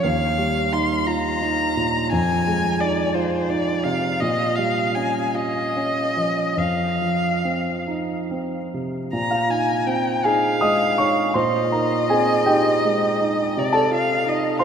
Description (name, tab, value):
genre	classical, impressionist duo for violin and grand piano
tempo	46-60 BPM (dotted quarters)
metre	6/8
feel	rubato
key	F minor, Bb dorian from 9.1 s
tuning	A4 = 440 Hz
part	warm violin	melody	0.0-14.6 s	C5 to C6	-22 LUFS	left 2 dB	none
part	warm grand piano	accompaniment	0.0-14.6 s	Eb2 to Eb6	-21 LUFS	right 1 dB	none
room	wet cathedral reverb, RT60 5.4 s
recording	in a vast, echoing space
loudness	-19 LUFS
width	side -7 dB against mid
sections	0.0-9.1 A section; 9.1-14.6 B section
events	none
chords	0.0 Ebadd9; 2.1 Fm7; 4.2 Bbm6; 6.6 F5; 9.1 Bbm11; 11.4 Abadd9/Bb; 13.6 Cm